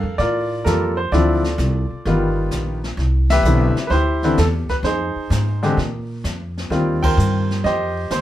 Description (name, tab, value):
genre	jazz piano trio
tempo	129 BPM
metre	4/4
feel	swing 69% on 8ths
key	G minor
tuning	A4 = 440 Hz
part	warm baby grand piano	melody	0.0-8.2 s	D3 to G5	-19 LUFS	equal	none
part	upright bass	bass	0.0-8.2 s	G1 to Bb2	-20 LUFS	equal	none
part	jazz brush drum kit	drums	0.2-8.2 s	brushed snare drum, crash cymbal, hi-hat, kick drum, ride cymbal, snare drum	-28 LUFS	left 1 dB	none
room	moderate studio reverb, RT60 0.5 s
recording	band playing live in one room, faint mains hum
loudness	-17 LUFS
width	side -13 dB against mid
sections	0.0-8.2 A section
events	band accent 3.2, 6.9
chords	0.0 Gm9; 1.1 Dm9; 2.1 G7alt; 3.0 Cmaj9; 4.8 Fm7; 5.8 Bb5; 6.7 Eb69